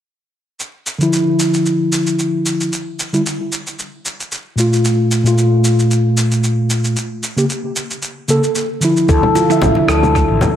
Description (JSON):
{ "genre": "organic downtempo", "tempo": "113 BPM", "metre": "4/4", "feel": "swing 55% on 16ths", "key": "D minor", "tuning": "A4 = 440 Hz", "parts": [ { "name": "electronic shaker, congas and rim click", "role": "drums", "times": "0.6-10.5 s", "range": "none", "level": "-21 LUFS", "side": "equal", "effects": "tape echo" }, { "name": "mellow tine electric piano", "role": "accompaniment", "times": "1.0-10.6 s", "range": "Bb2 to E5", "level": "-15 LUFS", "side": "equal", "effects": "medium stereo tremolo, sidechain pumping, tape echo" }, { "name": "handpan", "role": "arpeggios", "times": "9.1-10.4 s", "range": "D4 to A4", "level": "-14 LUFS", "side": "equal", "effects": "analog delay" }, { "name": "fretless electric bass", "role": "bass", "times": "9.1-10.4 s", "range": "A1 to D2", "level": "-17 LUFS", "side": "equal", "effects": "sidechain pumping" }, { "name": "electronic kick drum", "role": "drums", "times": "9.1-10.3 s", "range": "none", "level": "-18 LUFS", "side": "equal", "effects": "none" }, { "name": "congas", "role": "percussion", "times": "9.4-10.5 s", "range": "none", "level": "-24 LUFS", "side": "left 1 dB", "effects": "tape echo" } ], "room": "wet plate reverb, RT60 1.5 s, digital ambience", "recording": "echo-heavy mix", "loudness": "-13 LUFS", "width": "side -10 dB against mid", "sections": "0.6-10.6 A section", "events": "none", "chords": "0.6 Dmadd9; 2.7 N.C.; 4.8 Fadd11/Bb; 7.0 A(b9); 9.1 Dmadd9" }